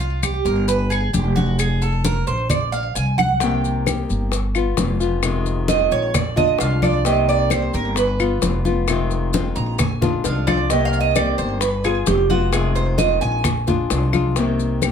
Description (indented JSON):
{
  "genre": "latin, Cuban son and guajira",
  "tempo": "132 BPM",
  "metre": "4/4",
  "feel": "straight",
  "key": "C minor",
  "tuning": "A4 = 441 Hz",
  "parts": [
    { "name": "Cuban tres", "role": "arpeggios", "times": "0.0-14.3 s", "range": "F4 to Bb5", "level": "-21 LUFS", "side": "right 6 dB", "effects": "slapback echo" },
    { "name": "upright bass", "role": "bass", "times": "0.0-14.9 s", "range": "F1 to C2", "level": "-22 LUFS", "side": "equal", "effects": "none" },
    { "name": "congas", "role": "percussion", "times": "0.0-14.9 s", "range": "none", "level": "-25 LUFS", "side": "left 2 dB", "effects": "none" },
    { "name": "maracas", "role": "percussion", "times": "0.0-14.9 s", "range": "none", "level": "-30 LUFS", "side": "left 8 dB", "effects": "none" },
    { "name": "claves", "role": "percussion", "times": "0.2-14.9 s", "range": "none", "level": "-27 LUFS", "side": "left 10 dB", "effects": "none" },
    { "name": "nylon-string guitar", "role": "accompaniment", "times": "3.4-14.9 s", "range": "C3 to G4", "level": "-23 LUFS", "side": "left 6 dB", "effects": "none" },
    { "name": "bongos", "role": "percussion", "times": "3.4-14.9 s", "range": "none", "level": "-28 LUFS", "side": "left 6 dB", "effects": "none" }
  ],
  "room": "moderate small room reverb, RT60 0.5 s",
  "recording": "none",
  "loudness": "-17 LUFS",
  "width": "side -7 dB against mid",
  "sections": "0.0-14.9 A section",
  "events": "Cuban tres solo 0.0-14.9; drum fill 10.0-10.7",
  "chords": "0.0 C5; 0.7 Fmadd9; 1.6 Fmadd11; 2.5 Bb9; 3.4 Cm7; 4.3 G7; 5.2 Fm7; 6.1 Bb7; 7.1 Cm7; 8.0 G7; 8.9 Fm7; 9.8 Bb7; 10.7 Cm7; 11.6 G7; 12.5 Fm7; 13.4 Bb7; 14.4 Cm7",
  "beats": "0.23 0.69 1.14 | 1.59 2.05 2.50 2.96 | 3.41 3.87 4.32 4.78 | 5.23 5.69 6.14 6.60 | 7.05 7.51 7.97 8.42 | 8.88 9.34 9.79 10.25 | 10.71 11.16 11.62 12.08 | 12.53 12.99 13.45 13.91 | 14.36 14.82"
}